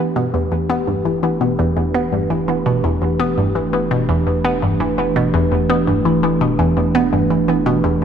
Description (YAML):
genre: ambient, sequencer-driven space music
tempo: 84 BPM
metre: 4/4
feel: straight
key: E minor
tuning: A4 = 440 Hz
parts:
  - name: sweeping resonant pad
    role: sustained chords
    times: 0.0-8.0 s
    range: E3 to B4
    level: -19 LUFS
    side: right 2 dB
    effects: chorus
  - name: hollow square pluck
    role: riff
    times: 0.0-8.0 s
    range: E2 to B3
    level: -17 LUFS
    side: left 1 dB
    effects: chorus, phaser, tape echo
  - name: warm sub bass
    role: bass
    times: 0.0-8.0 s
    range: E1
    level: -34 LUFS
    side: equal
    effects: none
room: moderate plate reverb, RT60 2.5 s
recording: none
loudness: -15 LUFS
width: side -8 dB against mid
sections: 0.0-8.0 A section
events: fade-in on sub bass 0.0-8.0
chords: 0.0 Em7